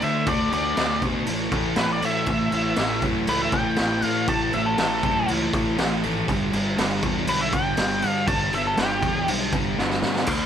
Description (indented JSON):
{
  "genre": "garage rock duo or trio",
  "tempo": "120 BPM",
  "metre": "4/4",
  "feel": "straight",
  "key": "unclear",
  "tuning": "A4 = 445 Hz",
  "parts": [
    { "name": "octave-fuzz lead guitar", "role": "melody", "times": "0.0-9.3 s", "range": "G4 to A5", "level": "-25 LUFS", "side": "left 1 dB", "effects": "distortion, plate reverb" },
    { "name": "fuzz guitar", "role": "riff", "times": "0.0-10.5 s", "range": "G2 to D4", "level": "-25 LUFS", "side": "equal", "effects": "distortion" },
    { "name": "fuzz fingered electric bass", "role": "bass", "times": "0.0-10.5 s", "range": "G1 to D3", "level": "-30 LUFS", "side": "equal", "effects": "overdrive" },
    { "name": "raw garage drum kit", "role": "drums", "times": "0.0-10.4 s", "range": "crash cymbal, kick drum, snare drum", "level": "-25 LUFS", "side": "equal", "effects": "none" }
  ],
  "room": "moderate small room reverb, RT60 0.5 s",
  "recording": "none",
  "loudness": "-20 LUFS",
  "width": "side -9 dB against mid",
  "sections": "0.0-10.3 A section",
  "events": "drum fill 9.8-10.3",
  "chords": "0.0 D5; 1.3 A5; 6.3 G5"
}